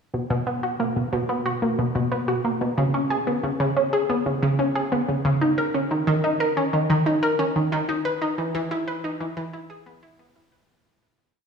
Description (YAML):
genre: ambient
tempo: 91 BPM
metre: 4/4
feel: straight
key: B major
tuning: A4 = 440 Hz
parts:
  - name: analog pluck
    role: solo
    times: 0.1-10.6 s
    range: B2 to B4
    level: -21 LUFS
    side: equal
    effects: chorus, tape echo
room: wet concert hall reverb, RT60 2.5 s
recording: studio reverb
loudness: -21 LUFS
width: side -6 dB against mid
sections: 0.1-10.7 A section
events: fade-out 7.2-10.7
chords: none